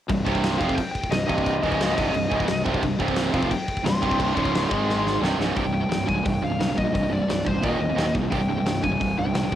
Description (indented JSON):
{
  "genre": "heavy metal",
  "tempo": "175 BPM",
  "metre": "4/4",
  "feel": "straight",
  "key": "C minor",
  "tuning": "A4 = 439 Hz",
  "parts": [
    { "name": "distorted electric guitar", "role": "riff", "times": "0.1-9.6 s", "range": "C2 to Ab3", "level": "-26 LUFS", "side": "right 6 dB", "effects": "overdrive, cassette tape" },
    { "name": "heavy high-gain guitar", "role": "riff", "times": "0.1-9.6 s", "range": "C2 to Ab3", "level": "-30 LUFS", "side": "left 7 dB", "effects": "distortion, cassette tape" },
    { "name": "tight distorted guitar", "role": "riff", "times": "0.1-5.6 s", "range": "C2 to Ab3", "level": "-30 LUFS", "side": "left 1 dB", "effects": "distortion, cassette tape" },
    { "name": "fuzz fingered electric bass", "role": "bass", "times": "0.1-9.6 s", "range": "C1 to C2", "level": "-29 LUFS", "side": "left 1 dB", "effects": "overdrive" },
    { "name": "big rock drum kit", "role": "drums", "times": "0.1-9.6 s", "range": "crash cymbal, hi-hat, kick drum, snare drum", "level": "-28 LUFS", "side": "left 1 dB", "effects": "cassette tape" },
    { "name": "high-gain lead guitar", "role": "melody", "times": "0.6-9.6 s", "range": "C5 to C6", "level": "-28 LUFS", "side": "left 2 dB", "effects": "distortion, cassette tape, tape echo" }
  ],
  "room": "little or no reverb",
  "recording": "home recording on cassette",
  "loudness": "-21 LUFS",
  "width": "side -11 dB against mid",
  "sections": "0.1-5.6 A section; 5.6-9.6 B section",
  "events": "drum fill 4.9-5.6",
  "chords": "0.1 Cm; 1.6 Db5; 2.0 Cm; 4.4 Db5; 4.7 Ab5; 5.2 C5; 7.6 Eb5; 8.3 C5",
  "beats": "| 0.08 0.42 0.77 1.11 | 1.45 1.79 2.14 2.48 | 2.82 3.17 3.51 3.85 | 4.20 4.54 4.88 5.22 | 5.57 5.91 6.25 6.60 | 6.94 7.29 7.63 7.97 | 8.32 8.66 9.01 9.35"
}